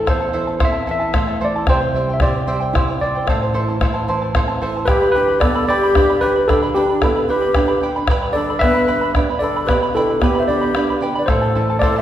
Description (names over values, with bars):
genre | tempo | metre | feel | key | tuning
andean folk, Andean ensemble | 75 BPM (dotted quarters) | 6/8 | straight | unclear | A4 = 440 Hz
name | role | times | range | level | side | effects
tine electric piano | melody | 0.0-12.0 s | G4 to E5 | -20 LUFS | equal | none
charango | accompaniment | 0.0-12.0 s | E4 to B5 | -23 LUFS | right 2 dB | none
nylon-string guitar | accompaniment | 0.0-12.0 s | E2 to G4 | -23 LUFS | right 2 dB | none
bombo | percussion | 0.1-11.9 s | none | -21 LUFS | left 1 dB | none
bright reedy large quena | second line | 4.9-12.0 s | D4 to C5 | -20 LUFS | left 2 dB | none
room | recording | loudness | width
wet recital hall reverb, RT60 1.7 s | recorded in a church or concert hall | -15 LUFS | side -11 dB against mid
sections
0.0-4.9 A section; 4.9-12.0 A section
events
none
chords
0.0 Am; 1.7 C; 3.3 Am; 4.9 G; 11.3 Am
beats
| 0.07 0.87 | 1.67 2.47 | 3.27 4.08 | 4.88 5.68 | 6.48 7.28 | 8.08 8.88 | 9.68 10.48 | 11.28